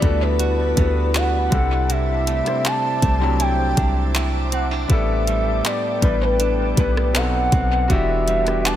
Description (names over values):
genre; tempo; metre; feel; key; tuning
contemporary R&B; 80 BPM; 4/4; straight; unclear; A4 = 440 Hz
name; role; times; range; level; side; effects
gliding portamento lead; melody; 0.0-8.8 s; B4 to A5; -23 LUFS; equal; chorus, dub echo
clear concert grand piano; accompaniment; 0.0-8.8 s; F#3 to C5; -25 LUFS; left 5 dB; dub echo
ethereal airy pad; sustained chords; 0.0-8.8 s; G3 to D6; -30 LUFS; equal; ensemble chorus, built-in reverb
direct-recorded clean electric guitar; arpeggios; 0.0-8.8 s; A2 to F#4; -28 LUFS; right 6 dB; dub echo
warm 808-style bass; bass; 0.0-8.8 s; E1 to D2; -21 LUFS; equal; none
smooth R&B drum kit; drums; 0.0-8.8 s; handclaps, hi-hat, kick drum, rim click; -23 LUFS; equal; dub echo
room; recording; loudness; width
little or no reverb; echo-heavy mix; -17 LUFS; side -11 dB against mid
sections
0.0-8.8 A section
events
none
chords
0.0 Gmaj9/D; 1.5 C69; 4.9 A9sus4; 7.1 B7b9; 7.9 Em9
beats
0.40 1.15 | 1.90 2.65 3.40 4.15 | 4.90 5.65 6.40 7.15 | 7.90 8.65